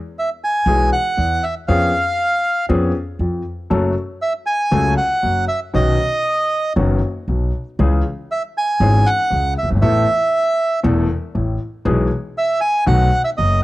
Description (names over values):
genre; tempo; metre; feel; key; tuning
tango; 118 BPM; 4/4; rubato; E major; A4 = 440 Hz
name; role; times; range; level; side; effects
bandoneon; melody; 0.2-13.6 s; D#5 to G#5; -17 LUFS; right 1 dB; cassette tape, plate reverb
clear concert grand piano; accompaniment; 0.7-13.6 s; E1 to A4; -20 LUFS; left 2 dB; cassette tape, plate reverb
upright bass; bass; 0.7-13.6 s; E1 to E#2; -18 LUFS; equal; none
room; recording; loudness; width
moderate booth ambience, RT60 0.2 s; home recording on cassette; -15 LUFS; side -17 dB against mid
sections
0.0-13.6 A section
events
none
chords
0.0 E; 1.7 C#7/E#; 3.7 F#m; 5.7 Badd9; 7.8 C#m; 9.8 Asus2; 11.9 E/B; 12.9 B7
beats
0.16 0.67 1.18 | 1.69 2.19 2.70 3.20 | 3.71 4.22 4.73 5.24 | 5.75 6.25 6.76 7.28 | 7.79 8.30 8.81 9.32 | 9.83 10.34 10.84 11.35 | 11.86 12.36 12.87 13.37